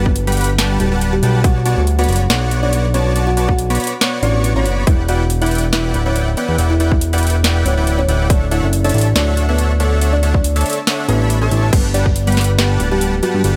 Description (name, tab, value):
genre	future bass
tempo	140 BPM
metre	4/4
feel	swing 54% on 16ths, half-time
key	unclear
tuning	A4 = 435 Hz
part	dense compressed supersaw	riff	0.0-13.6 s	G3 to C#6	-23 LUFS	equal	sidechain pumping
part	fat analog bass	bass	0.0-13.6 s	D1 to G2	-18 LUFS	equal	sidechain pumping
part	kalimba	melody	0.1-13.5 s	F#3 to F#5	-24 LUFS	equal	sidechain pumping, dub echo
part	electronic kick drum	drums	0.1-12.1 s	none	-17 LUFS	equal	overdrive
part	trap drum kit	drums	0.2-13.5 s	crash cymbal, hi-hat, snare drum	-23 LUFS	equal	overdrive
room	little or no reverb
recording	none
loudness	-15 LUFS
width	mono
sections	0.0-11.7 A section; 11.7-13.6 A section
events	drop 0.0-11.7, 11.7-13.6; kick drops out 10.9-11.7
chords	0.0 Gmaj7; 1.4 Bm9; 4.9 Em7; 8.3 Dmaj9; 11.7 Gmaj7